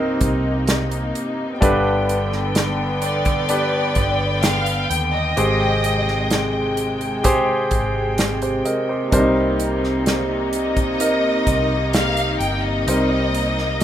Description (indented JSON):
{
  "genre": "pop ballad",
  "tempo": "64 BPM",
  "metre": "4/4",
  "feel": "straight",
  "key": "C minor",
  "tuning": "A4 = 441 Hz",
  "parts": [
    { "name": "warm concert grand piano", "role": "accompaniment", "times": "0.0-13.8 s", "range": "G2 to Eb5", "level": "-22 LUFS", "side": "equal", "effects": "none" },
    { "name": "warm studio string section", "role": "sustained chords", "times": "0.0-13.8 s", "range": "C3 to G5", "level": "-22 LUFS", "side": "left 1 dB", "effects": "none" },
    { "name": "vintage muted fingered electric bass", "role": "bass", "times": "0.0-13.8 s", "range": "G1 to Eb2", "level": "-26 LUFS", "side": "equal", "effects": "none" },
    { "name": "natural country drum kit", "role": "drums", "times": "0.2-13.8 s", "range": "hi-hat, kick drum, snare drum", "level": "-22 LUFS", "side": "equal", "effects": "none" },
    { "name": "warm studio violin section", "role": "melody", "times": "3.0-13.8 s", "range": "D5 to G5", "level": "-24 LUFS", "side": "equal", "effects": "digital delay" }
  ],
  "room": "studio reverb",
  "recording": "rough home demo mix",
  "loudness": "-17 LUFS",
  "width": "side -10 dB against mid",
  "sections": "0.0-13.8 A section",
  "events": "none",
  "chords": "0.0 Cm7; 1.6 G; 5.4 Abmaj7; 9.1 Cm7"
}